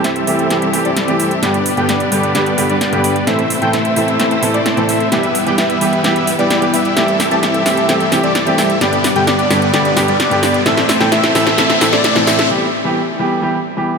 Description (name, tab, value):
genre	EDM, festival progressive house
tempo	130 BPM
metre	4/4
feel	straight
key	E minor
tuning	A4 = 440 Hz
part	warm grand piano	accompaniment	0.0-14.0 s	G2 to A4	-18 LUFS	right 1 dB	digital delay
part	clear symphonic string section	sustained chords	0.0-12.5 s	C3 to G4	-23 LUFS	left 3 dB	none
part	wide unison lead	arpeggios	0.0-12.5 s	D5 to A5	-20 LUFS	equal	digital delay
part	dense compressed supersaw	riff	0.0-12.5 s	G3 to A5	-17 LUFS	equal	cassette tape, low-pass filter, digital delay
part	wide detuned saw bass	bass	0.0-12.5 s	none	barely audible	none	none
part	big-room dance drum kit	drums	0.0-12.5 s	hi-hat, snare drum	-19 LUFS	equal	none
part	riser	sound effects	9.5-12.5 s	none	-23 LUFS	left 2 dB	none
room	moderate huge ambient reverb, RT60 4.8 s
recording	none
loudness	-12 LUFS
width	side -5 dB against mid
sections	0.0-14.0 A section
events	build-up 0.0-14.0; drum fill 0.0-12.5; filter sweep on analog synth lead 0.0-14.0; riser 9.5-12.5; break 12.5-14.0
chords	0.0 C6; 1.4 G; 3.3 Am; 5.1 Em; 7.0 C6; 8.8 G; 10.7 Am; 12.5 Em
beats	0.04 0.51 0.97 | 1.43 1.89 2.35 2.81 | 3.27 3.73 4.20 4.66 | 5.12 5.58 6.04 6.50 | 6.97 7.43 7.89 8.35 | 8.81 9.27 9.73 10.20 | 10.66 11.12 11.58 12.04 | 12.51 12.97 13.43 13.89